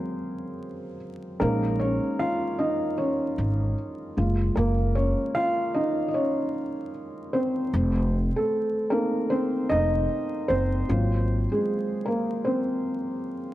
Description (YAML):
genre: hip hop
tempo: 76 BPM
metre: 4/4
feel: swing 63% on 16ths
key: unclear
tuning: A4 = 435 Hz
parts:
  - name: felt-muted upright piano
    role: accompaniment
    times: 0.0-13.5 s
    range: Gb3 to F5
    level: -25 LUFS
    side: equal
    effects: low-pass filter
  - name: upright bass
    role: bass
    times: 1.4-11.4 s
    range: F1 to Bb1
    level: -25 LUFS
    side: equal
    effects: none
room: moderate plate reverb, RT60 2.5 s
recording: dark, warm production, vinyl crackle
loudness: -23 LUFS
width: side -15 dB against mid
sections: 0.0-13.5 A section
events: felt piano solo 0.0-13.5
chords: 0.0 Ab9; 1.4 Bbm11; 4.2 Gbmaj9; 7.7 F7; 10.9 Ab13